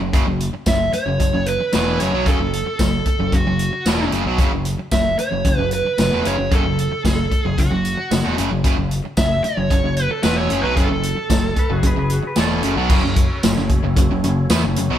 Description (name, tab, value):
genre	classic rock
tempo	113 BPM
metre	4/4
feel	straight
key	F# minor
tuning	A4 = 440 Hz
part	crunchy overdriven guitar	riff	0.0-15.0 s	E2 to B3	-25 LUFS	left 7 dB	none
part	distorted electric guitar	riff	0.0-15.0 s	E2 to B3	-24 LUFS	right 5 dB	overdrive
part	growling picked electric bass	bass	0.0-15.0 s	E1 to E2	-25 LUFS	equal	overdrive
part	vintage drum kit	drums	0.1-14.9 s	crash cymbal, hi-hat, kick drum, snare drum, tambourine	-19 LUFS	equal	none
part	dark smooth lead guitar	melody	0.7-12.3 s	F#4 to E5	-22 LUFS	right 2 dB	overdrive
part	clean lap steel guitar	second line	11.6-12.8 s	F#4 to B4	-27 LUFS	left 1 dB	none
part	tonewheel organ	sustained chords	12.9-15.0 s	C#4 to C#5	-31 LUFS	equal	overdrive, chorus vibrato, slow rotary speaker
room	moderate stone room reverb, RT60 1.3 s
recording	band playing live in one room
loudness	-16 LUFS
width	side -10 dB against mid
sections	0.0-12.9 A section; 12.9-15.0 B section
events	none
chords	0.0 F#m